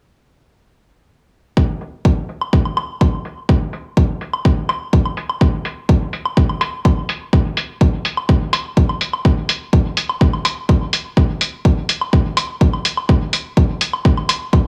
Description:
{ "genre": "techno", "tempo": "125 BPM", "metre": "4/4", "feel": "straight", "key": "none", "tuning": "none", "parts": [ { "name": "electronic kick drum", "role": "drums", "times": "1.6-14.6 s", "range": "none", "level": "-17 LUFS", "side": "equal", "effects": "overdrive" }, { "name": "electronic hi-hat", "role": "drums", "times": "1.8-14.4 s", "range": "none", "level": "-22 LUFS", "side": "equal", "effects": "low-pass filter on hats" }, { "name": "woodblock", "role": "percussion", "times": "2.4-14.6 s", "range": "none", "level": "-26 LUFS", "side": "equal", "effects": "sidechain pumping on perc, dub echo" } ], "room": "digital ambience", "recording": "small room ambience", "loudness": "-17 LUFS", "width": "mono", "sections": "1.6-14.7 A section", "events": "filter sweep on drum 1.6-14.7", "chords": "none" }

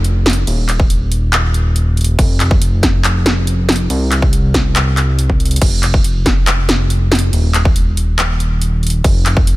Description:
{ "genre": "future bass", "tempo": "140 BPM", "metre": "4/4", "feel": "half-time", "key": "unclear", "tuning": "A4 = 445 Hz", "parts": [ { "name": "fat analog bass", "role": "bass", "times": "0.0-9.6 s", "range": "Eb1 to C2", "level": "-14 LUFS", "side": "equal", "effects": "sidechain pumping" }, { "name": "big-room dance drum kit", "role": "drums", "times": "0.0-9.6 s", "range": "crash cymbal, handclaps, hi-hat, snare drum", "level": "-17 LUFS", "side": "equal", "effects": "overdrive" }, { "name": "electronic kick drum", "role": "drums", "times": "0.8-9.5 s", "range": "none", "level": "-13 LUFS", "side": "equal", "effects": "overdrive" } ], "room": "little or no reverb", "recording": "none", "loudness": "-11 LUFS", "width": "side -18 dB against mid", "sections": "0.0-5.6 A section; 5.6-9.6 A section", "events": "drop 0.0-5.6, 5.6-9.6; drum fill 5.4", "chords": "none" }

